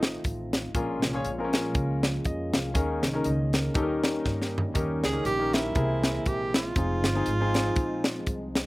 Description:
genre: uptempo gospel.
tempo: 120 BPM.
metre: 4/4.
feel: swing 57% on 8ths.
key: unclear.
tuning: A4 = 439 Hz.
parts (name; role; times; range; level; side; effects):
breathy tenor saxophone; melody; 0.0-0.5, 5.1-8.5 s; Eb4 to Ab4; -30 LUFS; right 2 dB; none.
mellow French horn section; sustained chords; 0.0-8.7 s; F3 to F4; -37 LUFS; left 1 dB; none.
mellow tonewheel organ; sustained chords; 0.0-8.7 s; Eb3 to Ab4; -37 LUFS; right 2 dB; fast rotary speaker.
upright bass; bass; 0.0-8.7 s; F1 to G2; -31 LUFS; equal; none.
crisp fusion drum kit; drums; 0.0-8.7 s; hi-hat, kick drum, snare drum, toms; -27 LUFS; equal; none.
warm concert grand piano; accompaniment; 0.7-8.0 s; Bb2 to F5; -30 LUFS; left 2 dB; none.
room: little or no reverb.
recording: recorded outdoors, with no room sound.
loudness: -24 LUFS.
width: side -20 dB against mid.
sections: 0.0-8.7 A section.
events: drum fill 4.3-4.8.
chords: 0.0 F7/A; 0.7 Bbm7; 2.8 Eb7sus4; 3.8 Eb7; 5.8 C7b13; 6.8 Fm7.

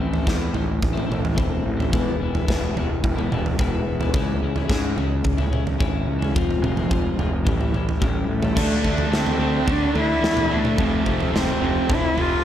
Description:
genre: quiet-loud alternative rock.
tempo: 108 BPM.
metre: 4/4.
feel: straight.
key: unclear.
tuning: A4 = 440 Hz.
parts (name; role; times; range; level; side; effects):
twelve-string electric guitar; arpeggios; 0.0-12.4 s; F2 to F4; -27 LUFS; left 5 dB; wide subtle chorus, slapback echo.
fuzz fingered electric bass; bass; 0.0-12.3 s; E1 to G#2; -26 LUFS; equal; overdrive.
huge arena drum kit; drums; 0.1-12.3 s; crash cymbal, kick drum, snare drum, toms; -23 LUFS; right 1 dB; none.
warm cello; melody; 8.3-12.4 s; A3 to F4; -22 LUFS; equal; slapback echo.
distorted electric guitar; riff; 8.6-12.4 s; F2 to D4; -25 LUFS; right 2 dB; distortion, slapback echo.
room: moderate lush hall reverb, RT60 1.5 s, small room reverb.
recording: big arena sound.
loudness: -19 LUFS.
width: side -10 dB against mid.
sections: 0.0-8.6 A section; 8.6-12.4 B section.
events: none.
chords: 0.0 Am; 1.9 E; 4.1 C#m; 6.3 Fm; 7.5 A7; 8.6 D5; 10.8 F.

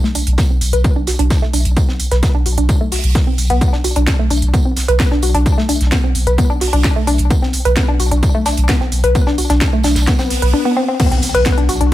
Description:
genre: driving peak-time techno.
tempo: 130 BPM.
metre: 4/4.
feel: straight.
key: B phrygian.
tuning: A4 = 440 Hz.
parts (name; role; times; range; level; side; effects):
woody wave-folded pluck; riff; 0.0-11.9 s; A3 to B4; -18 LUFS; left 1 dB; chorus, overdrive, sidechain pumping, ping-pong delay.
saturated sub bass; bass; 0.0-11.9 s; B1; -16 LUFS; equal; tube saturation, sidechain pumping, low-pass filter.
damped 70s drum kit; drums; 0.0-11.9 s; hi-hat, snare drum, tambourine; -28 LUFS; right 4 dB; sidechain pumping on hats, high-pass filter on hats, high-pass filter on snare, sidechain pumping on perc, high-pass filter on perc, high-pass filter on room.
techno drum kit; drums; 0.1-11.9 s; crash cymbal, hi-hat, snare drum; -22 LUFS; right 1 dB; none.
electronic kick drum; drums; 0.4-11.6 s; none; -16 LUFS; equal; none.
swell and impact; sound effects; 10.3-11.9 s; none; -23 LUFS; left 2 dB; none.
room: light reverb, small room ambience.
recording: none.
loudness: -12 LUFS.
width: side -14 dB against mid.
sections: 0.0-11.0 A section.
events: filter sweep on synth arpeggio sound 0.0-11.0; swell 10.3-11.0; impact 11.0-11.9.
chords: 0.0 Bm.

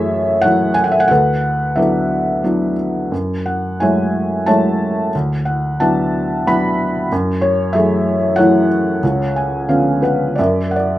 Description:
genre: classical, lyrical solo piano.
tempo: 91 BPM.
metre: 3/4.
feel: uneven beats, rubato.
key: F# minor.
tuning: A4 = 440 Hz.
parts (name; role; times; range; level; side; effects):
felt-muted upright piano; solo; 0.0-11.0 s; C#2 to B5; -14 LUFS; equal; none.
room: light reverb.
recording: close, detailed microphones.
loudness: -14 LUFS.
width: side -14 dB against mid.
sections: 0.0-11.0 A section.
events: felt piano fill 9.0-11.0.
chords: 0.0 F#m9; 1.1 D69; 3.1 F#m9; 5.1 D69; 7.1 F#m9; 9.0 C#7b9; 10.4 F#7.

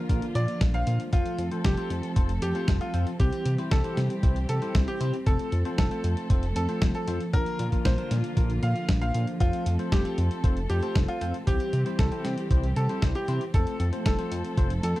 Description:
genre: italo disco.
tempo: 116 BPM.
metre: 4/4.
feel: straight.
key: F major.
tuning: A4 = 441 Hz.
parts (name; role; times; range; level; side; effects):
warm studio string section; sustained chords; 0.0-15.0 s; D3 to A4; -34 LUFS; right 1 dB; vintage 12-bit sampler grit.
bell-like tine electric piano; stabs; 0.0-15.0 s; Bb3 to C5; -36 LUFS; left 4 dB; wide subtle chorus, tape echo.
chorused synth bass; bass; 0.1-14.9 s; F1 to C3; -27 LUFS; equal; none.
dusty soul sampler-style drum kit; drums; 0.1-15.0 s; hi-hat, snare drum; -33 LUFS; equal; none.
electronic kick drum; drums; 0.1-14.7 s; none; -24 LUFS; equal; none.
bright concert grand piano; melody; 0.4-15.0 s; F4 to F5; -33 LUFS; equal; tape echo.
room: little or no reverb.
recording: dry, close 1970s-style studio recording.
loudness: -24 LUFS.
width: side -17 dB against mid.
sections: 0.0-15.0 A section.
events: none.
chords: 0.0 Bb; 1.1 F; 3.2 C; 5.3 F; 7.3 Bb; 9.4 F; 11.5 C; 13.5 F.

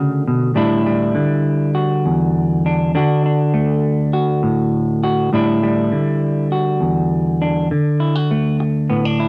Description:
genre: highlife.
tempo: 101 BPM.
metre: 4/4.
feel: straight.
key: D major.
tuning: A4 = 443 Hz.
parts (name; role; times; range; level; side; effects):
semi-hollow electric guitar; solo; 0.0-9.3 s; E2 to F#4; -17 LUFS; equal; none.
room: moderate large studio reverb, RT60 1.0 s.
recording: none.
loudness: -17 LUFS.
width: mono.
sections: 0.0-7.7 A section; 7.7-9.3 B section.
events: none.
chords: 0.0 D; 0.6 A7sus4; 2.9 D; 5.3 A7sus4; 7.7 D.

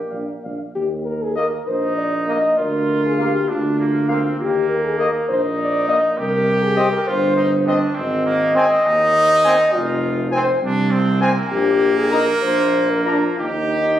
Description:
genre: classical, brass quintet.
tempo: 67 BPM (dotted quarters).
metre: 6/8.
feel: rubato.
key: Eb major.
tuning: A4 = 440 Hz.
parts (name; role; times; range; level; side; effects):
clear trumpet; second line; 0.0-14.0 s; Bb3 to G4; -23 LUFS; right 2 dB; none.
warm trombone; accompaniment; 0.0-13.2 s; Bb3 to Eb4; -26 LUFS; right 1 dB; none.
mellow cornet; melody; 0.1-13.2 s; Eb5 to Bb5; -26 LUFS; left 3 dB; none.
mellow French horn; accompaniment; 0.1-14.0 s; Eb4 to Eb5; -19 LUFS; left 2 dB; none.
mellow tuba; bass; 0.1-14.0 s; F1 to Eb2; -22 LUFS; right 2 dB; none.
room: wet recital hall reverb, RT60 1.7 s.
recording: recorded on a phone in the room, studio reverb.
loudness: -16 LUFS.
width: side -11 dB against mid.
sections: 0.8-14.0 A section.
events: none.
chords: 0.0 Bb; 0.8 Eb5; 2.6 Bb/D; 4.4 Eb5; 6.2 C5; 8.0 Ab; 9.7 F5; 11.5 Eb/Bb (rootless); 12.4 Bb5; 13.4 Eb.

